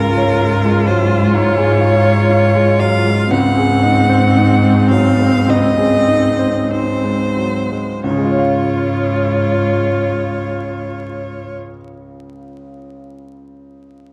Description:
classical, slow romantic movement for piano quartet; 43-66 BPM; 4/4; rubato; Db major; A4 = 439 Hz
rich violin; melody; 0.0-11.6 s; Bb4 to Gb5; -21 LUFS; equal
rich cello; second line; 0.0-11.5 s; Ab2; -20 LUFS; equal
clear baby grand piano; accompaniment; 0.0-14.1 s; Db2 to F5; -21 LUFS; equal
warm viola; accompaniment; 0.0-11.5 s; C4 to F4; -21 LUFS; equal
wet recital hall reverb, RT60 1.7 s; dark, warm production, vinyl crackle; -14 LUFS; mono
0.0-8.0 A section; 8.0-13.0 B section
slowing down 0.0-8.0
0.0 Db; 3.3 Ab7/Db; 8.0 Db

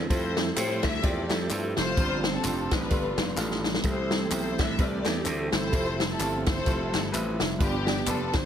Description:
uptempo gospel; 128 BPM; 4/4; swing 57% on 8ths; A4 = 441 Hz
warm studio string section; melody; 0.0-8.5 s; B3 to E5; -31 LUFS; left 1 dB
tonewheel organ; sustained chords; 0.0-8.5 s; E3 to G4; -35 LUFS; right 5 dB; slow rotary speaker, overdrive, chorus vibrato
gritty slap bass; bass; 0.0-8.5 s; F1 to A2; -32 LUFS; equal; overdrive
warm grand piano; accompaniment; 0.1-8.4 s; G2 to C6; -34 LUFS; left 1 dB
swinging big-band drum kit; drums; 0.1-8.4 s; kick drum, ride cymbal, snare drum; -28 LUFS; left 1 dB
tambourine and handclaps; percussion; 0.1-8.4 s; -38 LUFS; left 2 dB
light reverb, small room ambience; -24 LUFS; side -9 dB against mid
0.0-8.5 A section
drum fill 3.4-3.8; grand piano fill 6.9-7.6
0.1 Fmaj9; 2.0 G7sus4; 2.9 G9; 3.8 C6; 5.7 Fmaj9; 7.6 G7

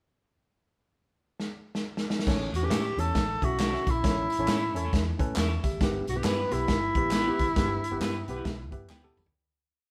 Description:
uptempo 1960s-style soul; 136 BPM; 4/4; swing 61% on 8ths; A mixolydian; A4 = 443 Hz
natural country drum kit; drums; 1.4-9.3 s; crash cymbal, hi-hat, kick drum, snare drum, toms; -32 LUFS; equal
tine electric piano; accompaniment; 2.3-9.3 s; G2 to C#6; -37 LUFS; equal
vintage muted fingered electric bass; bass; 2.3-9.3 s; G1 to A2; -36 LUFS; equal
tambourine and handclaps; percussion; 2.3-9.3 s; -45 LUFS; equal
warm tenor saxophone; melody; 2.6-8.9 s; E4 to B4; -32 LUFS; equal
electric guitar at the edge of break-up; stabs; 2.7-9.0 s; A3 to B4; -41 LUFS; equal; spring reverb
moderate stone room reverb, RT60 1.0 s; band playing live in one room; -28 LUFS; mono
0.5-2.3 pickup bar; 2.3-9.3 verse
drum fill 1.4-2.3, 8.9-9.3; fade-out 7.6-9.3; tine electric piano fill 8.5-9.3
0.5 N.C.; 2.3 A; 5.8 Em/G

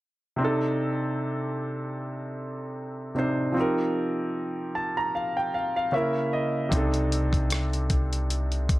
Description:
R&B, neo-soul; 76 BPM; 4/4; swing 55% on 16ths; C dorian; A4 = 440 Hz
clear grand piano; accompaniment; 0.4-8.8 s; C3 to Bb5; -26 LUFS; equal
deep dub fingered electric bass; bass; 6.7-8.8 s; C2; -27 LUFS; equal
dusty soul sampler-style drum kit; drums; 6.7-8.8 s; hi-hat, kick drum, rim click; -26 LUFS; equal
moderate studio reverb, RT60 0.5 s; -25 LUFS; side -18 dB against mid
0.4-8.8 A section
grand piano fill 4.3-6.7
0.4 Cm69; 3.6 F7sus4; 5.9 Dbm69; 6.7 Cm69

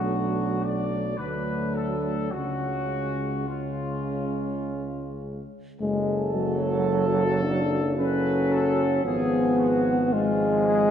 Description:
classical, hymn-like piece for brass band; 51-57 BPM; 3/4; rubato; F# minor; A4 = 440 Hz
dark trumpet section; melody; 0.0-10.9 s; E#4 to D5; -32 LUFS; left 4 dB
mellow French horn section; second line; 0.0-10.9 s; C#4 to A4; -31 LUFS; right 5 dB
dark euphonium; accompaniment; 0.0-10.9 s; F#3 to D4; -26 LUFS; left 2 dB
warm trombone; accompaniment; 0.0-10.9 s; C#3 to F#3; -32 LUFS; right 3 dB
warm tuba; bass; 0.0-10.9 s; F#1 to D2; -30 LUFS; right 1 dB
wet concert hall reverb, RT60 2.1 s; -23 LUFS; side -9 dB against mid
0.0-5.8 A section; 5.8-10.9 A section
0.0 Bm7; 2.3 C#; 5.8 F#m; 9.0 Fdim/Ab

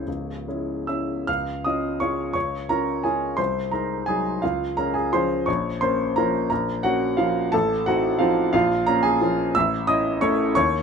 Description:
classical, piano waltz; 144-186 BPM; 3/4; rubato; Db major; A4 = 440 Hz
clear grand piano; solo; 0.0-10.8 s; C#1 to F6; -20 LUFS; equal
light reverb; minimal, uncompressed stereo recording; -20 LUFS; side -6 dB against mid
0.0-1.3 A section; 1.3-10.8 B section
0.0 C#m; 1.3 Db; 3.4 Ab7/C; 4.4 Db; 5.5 Bbm; 7.5 F7/A; 8.5 Bbm; 9.6 A

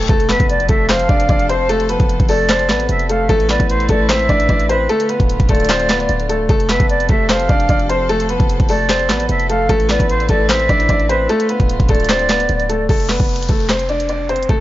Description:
hip hop, trap; 150 BPM; 4/4; half-time; A4 = 439 Hz
clear concert grand piano; melody; 0.0-14.6 s; A3 to D5; -18 LUFS; left 1 dB; analog delay
hard-hitting 808-style bass; bass; 0.0-14.6 s; D1 to A1; -20 LUFS; equal
trap drum kit; drums; 0.0-14.6 s; handclaps, hi-hat, kick drum, snare drum; -16 LUFS; equal
reverse cymbal, impact and downlifter; sound effects; 0.0-1.7, 12.9-14.6 s; -30 LUFS; left 1 dB
warm chamber string section; sustained chords; 0.1-12.9 s; C3 to B4; -26 LUFS; left 1 dB
silver concert flute; second line; 0.3-12.9 s; B4 to F5; -20 LUFS; right 1 dB; analog delay
small room reverb; dry, gritty hardware recording, vinyl crackle, nothing above 7.5 kHz; -13 LUFS; side -15 dB against mid
0.1-12.9 A section; 12.9-14.6 B section
impact 0.1-1.7
0.1 F; 3.3 Asus2; 4.9 Dm; 6.5 F; 9.7 Asus2; 11.3 Dm; 12.9 F

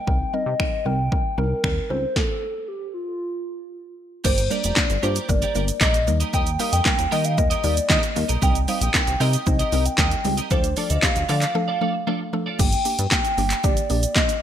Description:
dance-pop; 115 BPM; 4/4; straight; G minor; A4 = 440 Hz
hollow clarinet-like synth lead; melody; 0.0-14.4 s; F4 to G5; -26 LUFS; equal; chorus, digital delay
mallet-like synth pluck; accompaniment; 0.1-14.3 s; F3 to C5; -28 LUFS; left 1 dB; chorus, phaser, sidechain pumping
chorused synth bass; bass; 0.1-14.1 s; F1 to Eb3; -24 LUFS; equal; sidechain pumping
punchy analog drum machine; drums; 0.1-14.4 s; crash cymbal, finger snaps, handclaps, hi-hat, kick drum, shaker, snare drum; -22 LUFS; equal; gated reverb
twelve-string electric guitar; riff; 4.2-12.6 s; F4 to Eb5; -30 LUFS; right 5 dB; analog chorus
light reverb; bright 1980s-style digital production; -19 LUFS; side -10 dB against mid
0.0-4.2 A section; 4.2-12.6 B section; 12.6-14.4 C section
stop 2.2-4.2; break 11.6-12.6
0.1 Cm7; 2.2 N.C.; 4.2 Gm; 6.1 Eb; 8.4 Cm7; 10.5 Dm; 12.6 Gm

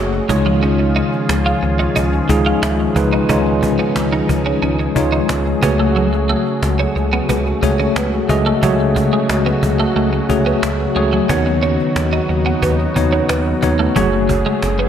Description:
1980s-style pop; 90 BPM; 4/4; straight; F# dorian; A4 = 442 Hz
bell-like tine electric piano; accompaniment; 0.0-14.9 s; C#3 to D#5; -17 LUFS; left 1 dB; medium stereo tremolo
brassy analog pad; sustained chords; 0.0-14.9 s; C#3 to G#4; -22 LUFS; left 1 dB; chorus
smooth gliding synth bass; bass; 0.0-14.9 s; F#1 to D#2; -20 LUFS; equal
cajon; drums; 0.1-14.9 s; -23 LUFS; equal
twelve-string electric guitar; riff; 0.3-14.9 s; E#3 to E#4; -22 LUFS; right 4 dB; ensemble chorus, digital delay
moderate plate reverb, RT60 2.2 s; bright 1980s-style digital production; -14 LUFS; side -9 dB against mid
0.0-14.9 A section
0.3 C#add9; 5.6 F#madd9/C#; 11.3 Badd9/D#; 14.0 F#madd9

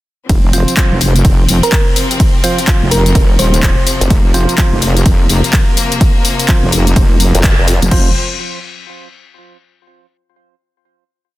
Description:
bass house; 126 BPM; 4/4; swing 62% on 16ths; A4 = 443 Hz
clear chamber string section; sustained chords; 0.3-8.1 s; C3 to C5; -21 LUFS; left 3 dB; sidechain pumping
wobble bass; bass; 0.3-8.1 s; Eb1 to F1; -12 LUFS; equal; chorus, sidechain pumping
electronic kick drum; drums; 0.3-8.0 s; -12 LUFS; equal; overdrive
house drum kit; drums; 0.3-8.0 s; crash cymbal, handclaps, hi-hat, ride cymbal, tambourine; -17 LUFS; left 2 dB
percussive organ stab; stabs; 0.5-8.1 s; F3 to C5; -22 LUFS; right 3 dB; chorus, sidechain pumping, digital delay
thumb-piano-like synth pluck; melody; 1.6-3.9 s; Bb4 to C5; -19 LUFS; right 1 dB; chorus, cassette tape, digital delay
formant-sweep wobble bass; bass; 4.0-4.1, 7.3-7.8 s; F1; -12 LUFS; equal; chorus, overdrive, sidechain pumping
little or no reverb; dense, heavily limited modern master; -9 LUFS; side -16 dB against mid
0.3-7.9 drop; 7.9-9.8 final chord
drop 0.3-7.9; band accent 7.4
0.3 F5

